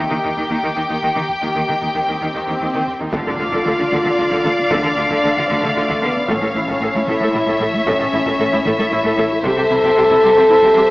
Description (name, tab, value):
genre	cinematic, hybrid orchestral and electronic film score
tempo	76 BPM (dotted quarters)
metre	6/8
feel	straight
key	unclear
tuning	A4 = 439 Hz
part	warm symphonic violin section	second line	0.0-10.9 s	G4 to G5	-22 LUFS	left 1 dB	none
part	smooth gliding synth bass	riff	0.0-10.8 s	C2 to A3	-30 LUFS	equal	low-pass filter
part	rich symphonic cello section	bass	0.0-10.8 s	A2 to Eb3	-24 LUFS	right 1 dB	none
part	dark symphonic viola section	accompaniment	0.1-10.8 s	Bb3 to A4	-24 LUFS	equal	low-pass filter
part	swell and impact	sound effects	2.0-4.7 s	none	-29 LUFS	equal	none
part	rich symphonic violin section	melody	3.1-10.9 s	E5 to F5	-22 LUFS	left 1 dB	low-pass filter
part	mellow French horn section	sustained chords	3.1-10.9 s	A3 to A4	-16 LUFS	left 1 dB	low-pass filter
part	pure sine sub bass	bass	3.1-10.9 s	D1 to C2	-42 LUFS	equal	none
part	rich symphonic double bass section	bass	3.1-10.8 s	A1 to D2	-30 LUFS	right 1 dB	none
part	solo taiko drums	drums	3.1-10.9 s	none	-30 LUFS	equal	none
room	moderate scoring stage reverb, RT60 2.0 s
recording	AM radio sound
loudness	-14 LUFS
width	side -20 dB against mid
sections	0.0-3.1 A section; 3.1-10.9 B section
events	build-up 0.0-3.1; swell 2.0-3.1; impact 3.1-4.7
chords	0.0 Eb; 3.1 Dm; 6.3 A; 9.4 C